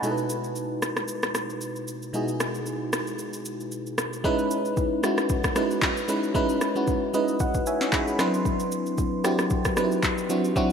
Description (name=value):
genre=amapiano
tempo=114 BPM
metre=4/4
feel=swing 55% on 16ths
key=unclear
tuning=A4 = 440 Hz
part: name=FM electric piano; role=accompaniment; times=0.0-10.7 s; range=B2 to C6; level=-25 LUFS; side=equal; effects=chorus, low-pass filter
part: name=smooth R&B drum kit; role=drums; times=0.0-10.7 s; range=handclaps, kick drum, rim click, shaker, snare drum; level=-28 LUFS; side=equal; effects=overdrive
room=wet plate reverb, RT60 2.5 s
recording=dreamy mix soaked in reverb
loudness=-23 LUFS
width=side -7 dB against mid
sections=0.0-4.2 A section; 4.2-10.7 B section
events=filter sweep on FM electric piano 0.0-4.2; FM electric piano fill 6.9-8.5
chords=0.0 Emaj9/B; 4.2 C#m9; 8.2 Cmaj9#11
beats=| 0.03 0.56 1.09 1.61 | 2.14 2.66 3.19 3.72 | 4.24 4.77 5.30 5.82 | 6.35 6.88 7.40 7.93 | 8.45 8.98 9.51 10.03 | 10.56